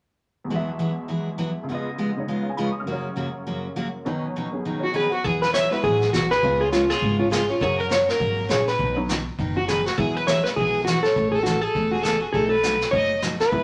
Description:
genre	country, western swing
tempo	203 BPM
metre	4/4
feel	swing 60% on 8ths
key	E major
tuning	A4 = 438 Hz
part	honky-tonk upright piano	accompaniment	0.4-10.8, 13.5-13.6 s	C#2 to E#6	-33 LUFS	equal	none
part	picked steel-string acoustic guitar	accompaniment	0.5-13.6 s	F#2 to A4	-30 LUFS	equal	none
part	hollow-body jazz guitar	melody	4.8-13.6 s	E#4 to C#5	-25 LUFS	equal	none
part	rich fiddle	second line	4.8-13.6 s	C#4 to E5	-28 LUFS	equal	none
part	upright bass	bass	5.2-13.6 s	E1 to F#2	-34 LUFS	equal	none
part	vintage brush drum kit	drums	5.2-13.6 s	brushed snare drum, hi-hat, kick drum, snare drum	-32 LUFS	equal	none
room	wet studio reverb, RT60 0.5 s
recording	none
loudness	-23 LUFS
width	mono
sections	0.5-5.2 A section; 5.2-13.6 B section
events	none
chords	0.5 Eadd9; 1.7 C#7; 2.9 F#; 4.1 Badd9; 5.2 Eadd9; 6.4 C#7; 7.6 F#; 8.8 Badd9; 10.0 Eadd9; 11.2 A; 12.3 B7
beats	| 0.50 0.79 1.09 1.39 | 1.68 1.98 2.28 2.57 | 2.87 3.17 3.46 3.76 | 4.05 4.35 4.65 4.94 | 5.24 5.54 5.83 6.13 | 6.42 6.72 7.02 7.31 | 7.61 7.91 8.20 8.50 | 8.79 9.09 9.38 9.68 | 9.98 10.27 10.57 10.86 | 11.16 11.45 11.75 12.05 | 12.34 12.64 12.93 13.23 | 13.52

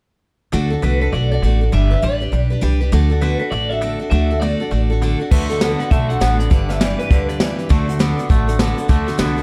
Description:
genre	rockabilly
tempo	201 BPM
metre	4/4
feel	swing 62% on 8ths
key	D major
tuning	A4 = 439 Hz
part	picked steel-string acoustic guitar	accompaniment	0.5-9.4 s	D3 to B4	-25 LUFS	equal	none
part	twangy electric guitar	riff	0.5-9.4 s	G2 to B3	-29 LUFS	equal	subtle chorus
part	upright bass	bass	0.5-9.4 s	G1 to D2	-21 LUFS	equal	none
part	electric guitar through a small old amp	melody	0.8-7.8 s	A4 to F#5	-26 LUFS	equal	phaser, tape echo
part	jazz brush drum kit	drums	5.3-9.4 s	crash cymbal, hi-hat, kick drum, snare drum	-20 LUFS	equal	none
room	light reverb, small room reverb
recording	none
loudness	-17 LUFS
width	mono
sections	0.5-5.3 A section; 5.3-9.4 B section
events	none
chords	0.5 D; 1.7 G; 2.9 D; 6.5 G; 7.7 D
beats	| 0.53 0.83 1.13 1.43 | 1.73 2.03 2.33 2.63 | 2.93 3.23 3.52 3.82 | 4.12 4.42 4.72 5.02 | 5.32 5.62 5.91 6.21 | 6.51 6.81 7.11 7.40 | 7.70 8.00 8.30 8.59 | 8.89 9.19

